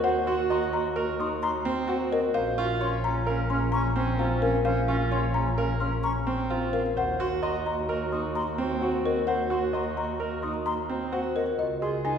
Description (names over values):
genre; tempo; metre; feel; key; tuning
classical, minimalist pattern music; 130 BPM; 5/4; straight; unclear; A4 = 439 Hz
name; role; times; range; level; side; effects
folk marimba with soft mallets; melody; 0.0-12.2 s; Bb4 to C6; -30 LUFS; left 4 dB; none
bright clarinet; second line; 0.0-12.2 s; Db4 to Gb4; -34 LUFS; right 2 dB; none
clear grand piano; arpeggios; 0.0-12.2 s; C4 to Eb5; -30 LUFS; right 3 dB; none
warm double bass; bass; 0.0-12.2 s; Bb1 to Eb2; -31 LUFS; equal; none
mellow hollow silver concert flute; arpeggios; 0.3-12.1 s; Eb5 to F6; -37 LUFS; left 2 dB; none
room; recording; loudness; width
wet concert hall reverb, RT60 2.4 s; heard from further back in the room; -24 LUFS; side -7 dB against mid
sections
0.0-11.6 A section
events
none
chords
0.0 Ebm; 2.4 Bbm; 7.0 Ebm; 11.6 Dbadd9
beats
| 0.04 0.50 0.97 1.43 1.89 | 2.35 2.81 3.27 3.73 4.20 | 4.66 5.12 5.58 6.04 6.50 | 6.97 7.43 7.89 8.35 8.81 | 9.27 9.73 10.20 10.66 11.12 | 11.58 12.04